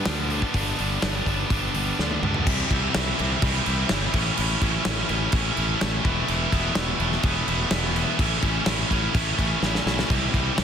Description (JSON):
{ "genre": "quiet-loud alternative rock", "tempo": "126 BPM", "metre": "4/4", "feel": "straight", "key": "unclear", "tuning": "A4 = 440 Hz", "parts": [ { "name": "heavy high-gain guitar", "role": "riff", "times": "0.0-10.6 s", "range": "G2 to E4", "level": "-24 LUFS", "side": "equal", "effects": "distortion" }, { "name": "fuzz fingered electric bass", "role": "bass", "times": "0.1-10.6 s", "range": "E1 to D2", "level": "-28 LUFS", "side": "equal", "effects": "overdrive" }, { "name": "big rock drum kit", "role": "drums", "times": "0.1-10.6 s", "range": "crash cymbal, hi-hat, kick drum, snare drum, toms", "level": "-25 LUFS", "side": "equal", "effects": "soft clipping on kick, soft clipping on snare" } ], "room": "little or no reverb", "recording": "dense, heavily limited modern master", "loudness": "-21 LUFS", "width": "side -8 dB against mid", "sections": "0.0-2.5 A section; 2.5-10.6 B section", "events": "drum fill 2.0-2.5, 9.6-10.1", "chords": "0.0 G; 2.5 C; 4.1 A; 6.1 Esus4; 8.2 A; 10.1 C" }